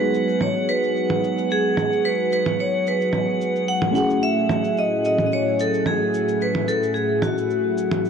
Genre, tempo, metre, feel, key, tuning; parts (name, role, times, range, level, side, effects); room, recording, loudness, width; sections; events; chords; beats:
sunset chillout; 110 BPM; 4/4; swing 54% on 16ths; F# dorian; A4 = 442 Hz
vibraphone with hard mallets; melody; 0.0-8.0 s; F#4 to F#5; -22 LUFS; equal; vintage 12-bit sampler grit, tape echo
mellow FM electric piano; accompaniment; 0.0-8.1 s; G#3 to G#4; -26 LUFS; equal; chorus, auto-pan, tape echo
lush unison pad; sustained chords; 0.0-8.1 s; A2 to G#4; -26 LUFS; equal; chorus
drifting glass-harmonics texture; texture; 0.0-8.1 s; F#5; -33 LUFS; equal; chorus, built-in reverb
cabasa and congas; drums; 0.1-8.1 s; -27 LUFS; right 3 dB; low-pass filter on perc, low-pass filter on room
moderate plate reverb, RT60 3.4 s; -19 LUFS; side -6 dB against mid
0.0-8.1 A section
filter sweep on FM electric piano 0.0-8.1
0.0 G#m7; 4.0 F#m9/A
0.41 0.95 1.50 | 2.04 2.59 3.13 3.68 | 4.22 4.77 5.31 5.86 | 6.41 6.95 7.50 8.04